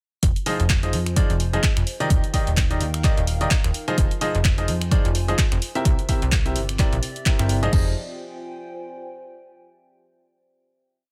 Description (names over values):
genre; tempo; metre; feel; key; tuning
piano house; 128 BPM; 4/4; swing 57% on 16ths; F dorian; A4 = 440 Hz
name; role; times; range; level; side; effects
plucky analog bass; bass; 0.2-7.9 s; Eb1 to F2; -26 LUFS; equal; sidechain pumping
electronic kick drum; drums; 0.2-7.8 s; none; -23 LUFS; equal; none
punchy analog drum machine; drums; 0.2-7.8 s; crash cymbal, finger snaps, handclaps, hi-hat; -30 LUFS; equal; none
warbly tape-like pad; texture; 0.8-9.6 s; C4 to Ab5; -39 LUFS; equal; chorus, built-in reverb, sidechain pumping
clear baby grand piano; riff; 0.5-7.9 s; C3 to E5; -29 LUFS; equal; sidechain pumping, delay
room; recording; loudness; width
little or no reverb; none; -21 LUFS; mono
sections
0.2-7.7 drop; 7.7-9.6 final chord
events
drop 0.2-7.7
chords
0.2 Fm7; 1.9 Ebmaj7; 3.7 Fm7; 5.9 C7; 7.7 Fm7